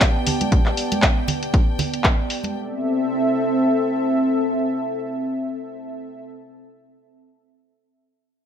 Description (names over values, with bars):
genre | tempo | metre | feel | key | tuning
deep house | 118 BPM | 4/4 | swing 56% on 16ths | A minor | A4 = 440 Hz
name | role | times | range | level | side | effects
warm analog pad | sustained chords | 0.0-6.2 s | B3 to E5 | -25 LUFS | left 1 dB | chorus, sidechain pumping
electronic kick drum | drums | 0.0-2.2 s | none | -18 LUFS | equal | small room reverb
house drum kit | drums | 0.0-2.5 s | handclaps, hi-hat | -22 LUFS | left 1 dB | low-pass filter on hats, small room reverb, low-pass filter on cymbals, low-pass filter on snare
clear studio violin section | texture | 0.0-2.6 s | G5 | -34 LUFS | equal | sidechain pumping
warbly tape-like pad | texture | 0.0-6.4 s | B3 to A5 | -25 LUFS | right 1 dB | chorus, built-in reverb, sidechain pumping
congas | percussion | 0.3-2.5 s | none | -27 LUFS | right 4 dB | none
room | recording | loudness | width
light reverb | none | -18 LUFS | side -8 dB against mid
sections
0.0-2.6 A section; 2.6-6.6 B section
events
none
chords
0.0 A9sus4; 2.6 Am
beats
0.01 | 0.52 1.03 1.54 2.05 | 2.55 3.06 3.57 4.08 | 4.59 5.10 5.61 6.11